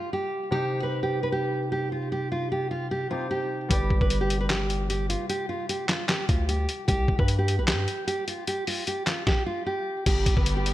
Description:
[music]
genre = hip hop, trap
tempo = 151 BPM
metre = 4/4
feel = half-time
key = C harmonic minor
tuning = A4 = 439 Hz
[part]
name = nylon-string guitar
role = melody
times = 0.0-10.7 s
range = F4 to B4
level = -28 LUFS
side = right 1 dB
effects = low-pass filter, ping-pong delay
[part]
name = concert harp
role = accompaniment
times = 0.0-6.9 s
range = C3 to D5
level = -33 LUFS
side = left 1 dB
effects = low-pass filter
[part]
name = long sustained 808-style bass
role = bass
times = 3.7-10.7 s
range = G1 to G2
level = -27 LUFS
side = equal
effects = none
[part]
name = lo-fi sampler-style drum kit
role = drums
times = 3.7-10.7 s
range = crash cymbal, handclaps, hi-hat, kick drum, snare drum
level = -26 LUFS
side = equal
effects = none
[part]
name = muted studio string section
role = sustained chords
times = 10.1-10.7 s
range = D3 to G4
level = -34 LUFS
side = equal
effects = none
[sound]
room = light reverb, studio reverb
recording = bright 1980s-style digital production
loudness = -24 LUFS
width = side -14 dB against mid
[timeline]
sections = 0.0-10.1 A section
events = none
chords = 0.0 G; 0.5 Cm; 3.7 G; 6.9 C5; 10.1 G

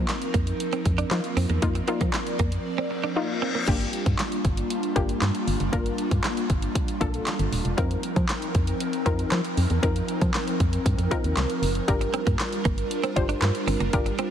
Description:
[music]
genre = dance-pop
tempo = 117 BPM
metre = 4/4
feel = straight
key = G minor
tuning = A4 = 443 Hz
[part]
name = wide unison pluck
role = accompaniment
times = 0.0-14.3 s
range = Bb3 to C5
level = -30 LUFS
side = left 4 dB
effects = sidechain pumping
[part]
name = airy breathy pad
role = sustained chords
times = 0.0-14.3 s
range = F3 to D5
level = -29 LUFS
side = right 1 dB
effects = chorus, sidechain pumping
[part]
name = direct-recorded clean electric guitar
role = riff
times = 0.0-3.6, 12.0-14.3 s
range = Bb3 to D4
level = -31 LUFS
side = right 7 dB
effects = wide subtle chorus
[part]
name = organ-like FM bass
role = bass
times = 0.0-14.1 s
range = Eb1 to F3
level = -26 LUFS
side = equal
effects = sidechain pumping
[part]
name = pop drum kit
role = drums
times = 0.1-14.3 s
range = crash cymbal, handclaps, hi-hat, kick drum, snare drum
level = -27 LUFS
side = equal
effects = none
[part]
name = reverse cymbal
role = sound effects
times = 2.9-3.7 s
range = none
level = -34 LUFS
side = left 4 dB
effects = none
[sound]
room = light reverb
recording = heavily compressed radio sound, multiband compression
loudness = -22 LUFS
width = side -9 dB against mid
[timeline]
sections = 0.0-3.7 A section; 3.7-14.3 B section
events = reverse cymbal 2.9-3.7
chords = 0.0 F7sus4; 3.7 Gm7; 7.8 F7sus4; 11.9 Gm7

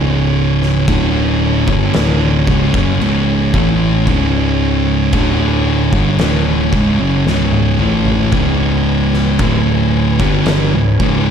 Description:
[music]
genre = stoner and doom metal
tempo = 56 BPM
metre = 4/4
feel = straight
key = unclear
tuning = A4 = 440 Hz
[part]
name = mellow tonewheel organ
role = sustained chords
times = 0.0-11.3 s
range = C#4 to G#5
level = -26 LUFS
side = left 1 dB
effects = overdrive, fast rotary speaker
[part]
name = thick fuzz guitar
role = riff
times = 0.0-11.3 s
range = C#2 to A3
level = -17 LUFS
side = left 10 dB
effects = distortion
[part]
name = thick fuzz guitar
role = riff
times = 0.0-11.3 s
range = C#2 to A3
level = -16 LUFS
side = right 9 dB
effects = distortion
[part]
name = overdriven picked electric bass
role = bass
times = 0.0-11.3 s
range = C#1 to A1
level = -18 LUFS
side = equal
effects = tube saturation
[part]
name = oversized low-tuned drum kit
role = drums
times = 0.6-11.3 s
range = crash cymbal, kick drum, snare drum, toms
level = -19 LUFS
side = equal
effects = none
[sound]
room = light reverb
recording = none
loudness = -11 LUFS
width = side -7 dB against mid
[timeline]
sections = 0.0-11.3 A section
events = drum fill 7.3-8.3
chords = 0.0 C#m

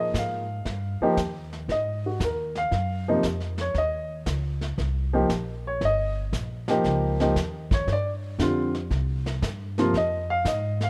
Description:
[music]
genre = jazz piano trio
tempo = 116 BPM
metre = 4/4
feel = swing 68% on 8ths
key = Eb mixolydian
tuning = A4 = 442 Hz
[part]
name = dark baby grand piano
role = melody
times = 0.0-10.9 s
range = C3 to F5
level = -28 LUFS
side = equal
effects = none
[part]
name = upright bass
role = bass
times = 0.0-10.9 s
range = G1 to Bb2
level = -31 LUFS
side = equal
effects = none
[part]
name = vintage brush drum kit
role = drums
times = 0.1-10.9 s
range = brushed snare drum, hi-hat, kick drum, snare drum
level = -33 LUFS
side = equal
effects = none
[sound]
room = light reverb, studio ambience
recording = rough home demo mix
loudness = -26 LUFS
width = mono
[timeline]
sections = 0.0-10.9 A section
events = grand piano solo 0.0-10.9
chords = 0.0 Bb5; 0.7 Ebadd9; 1.7 Ab7sus2; 3.8 Eb7; 7.9 G5; 8.9 C5; 9.9 Fm

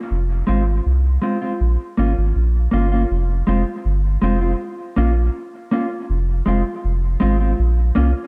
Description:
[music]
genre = dub reggae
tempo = 80 BPM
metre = 4/4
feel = straight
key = F minor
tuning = A4 = 440 Hz
[part]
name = soft dub sub bass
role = bass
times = 0.1-8.1 s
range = F1 to C2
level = -20 LUFS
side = equal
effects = none
[part]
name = mellow electric guitar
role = accompaniment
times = 0.5-8.1 s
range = Ab3 to F4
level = -24 LUFS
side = equal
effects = dub echo
[sound]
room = light reverb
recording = dark, warm production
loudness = -19 LUFS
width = mono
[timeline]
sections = 0.0-3.1 A section; 3.1-8.3 B section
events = none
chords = 0.1 Fm; 1.6 Bbm; 3.1 Fm; 4.6 Bbm; 6.1 Fm; 7.6 Bbm

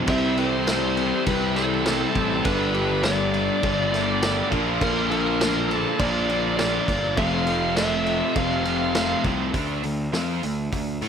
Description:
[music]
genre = classic rock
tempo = 102 BPM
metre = 4/4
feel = straight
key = unclear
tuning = A4 = 436 Hz
[part]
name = bright tonewheel organ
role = sustained chords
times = 0.0-9.5 s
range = B3 to C5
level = -38 LUFS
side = equal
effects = none
[part]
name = crunchy overdriven guitar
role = riff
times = 0.0-11.1 s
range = F2 to A4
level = -29 LUFS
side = left 13 dB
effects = none
[part]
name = distorted electric guitar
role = riff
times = 0.0-9.5 s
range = F2 to E4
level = -29 LUFS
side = equal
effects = distortion
[part]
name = tight distorted guitar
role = riff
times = 0.0-11.1 s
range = F2 to A4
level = -29 LUFS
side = right 13 dB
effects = distortion
[part]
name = fuzz picked electric bass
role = bass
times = 0.0-11.1 s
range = F1 to A2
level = -28 LUFS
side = equal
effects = overdrive
[part]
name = bluesy overdriven lead guitar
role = melody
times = 0.1-9.2 s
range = A4 to F5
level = -26 LUFS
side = equal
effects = distortion, slapback echo
[part]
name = barky reed electric piano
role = accompaniment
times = 0.1-8.4 s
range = A3 to A5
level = -34 LUFS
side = right 4 dB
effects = none
[part]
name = vintage drum kit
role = drums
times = 0.1-11.1 s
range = crash cymbal, hi-hat, kick drum, snare drum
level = -28 LUFS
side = equal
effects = none
[sound]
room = studio reverb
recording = none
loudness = -20 LUFS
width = side -7 dB against mid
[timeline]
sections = 0.0-9.5 A section; 9.5-11.1 B section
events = reed electric piano fill 3.6-4.8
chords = 0.1 C; 2.5 Gadd9; 4.5 Bb; 7.2 F; 9.5 D5

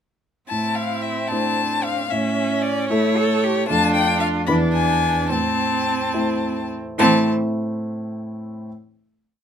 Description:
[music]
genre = quick classical-period movement for piano quartet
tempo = 70-76 BPM (dotted quarters)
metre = 6/8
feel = straight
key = A minor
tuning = A4 = 439 Hz
[part]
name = clear violin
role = melody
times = 0.5-7.3 s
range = C#5 to B5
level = -22 LUFS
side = left 6 dB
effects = none
[part]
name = rich cello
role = second line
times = 0.5-7.3 s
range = E3 to A4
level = -27 LUFS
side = right 7 dB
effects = none
[part]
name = clear viola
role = accompaniment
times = 0.5-7.3 s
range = A3 to D4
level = -26 LUFS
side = right 4 dB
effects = none
[part]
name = dark grand piano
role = accompaniment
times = 0.5-8.7 s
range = E2 to C5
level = -22 LUFS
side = equal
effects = none
[sound]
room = light reverb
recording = none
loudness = -18 LUFS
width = side -8 dB against mid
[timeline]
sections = 0.5-7.0 A section; 7.0-8.7 final chord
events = none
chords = 0.5 Am; 2.1 A; 3.7 Dm/F; 4.5 E7; 5.3 Am

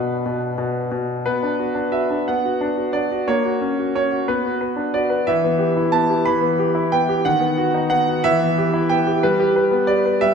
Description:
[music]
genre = classical-period piano sonatina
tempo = 60 BPM (dotted quarters)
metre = 6/8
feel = straight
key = B minor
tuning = A4 = 441 Hz
[part]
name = clear concert grand piano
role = solo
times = 0.0-10.3 s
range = B2 to B5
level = -17 LUFS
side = equal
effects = none
[sound]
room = wet recital hall reverb, RT60 1.8 s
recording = none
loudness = -17 LUFS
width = side -6 dB against mid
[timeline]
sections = 0.0-1.3 A section; 1.3-10.3 B section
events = none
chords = 0.0 Bm; 3.3 F#/A#; 4.3 Bm; 5.3 Em; 7.3 B/D#; 8.2 Em; 9.2 G

